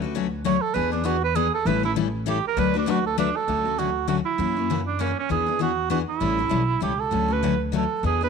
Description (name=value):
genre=acoustic string swing (jazz manouche)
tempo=198 BPM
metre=3/4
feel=swing 58% on 8ths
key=D major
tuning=A4 = 441 Hz
part: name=picked steel-string acoustic guitar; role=accompaniment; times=0.0-8.3 s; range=C#3 to B4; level=-26 LUFS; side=left 11 dB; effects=none
part: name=upright bass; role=bass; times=0.0-8.3 s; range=A1 to F#2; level=-28 LUFS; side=equal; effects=none
part: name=mellow cor anglais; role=melody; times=0.5-8.3 s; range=C#4 to C#5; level=-24 LUFS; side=right 9 dB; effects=none
room=moderate echo chamber reverb, RT60 2.0 s, studio reverb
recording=1960s-style stereo with parts hard left and right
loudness=-21 LUFS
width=side -6 dB against mid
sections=0.0-3.5 A section; 3.5-8.3 B section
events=cor anglais solo 0.0-3.5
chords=0.0 Dmaj7; 0.8 E7; 1.7 A7; 2.6 D6; 3.5 Dmaj7; 4.4 F#7; 5.3 E7; 6.2 A7; 7.1 Dmaj7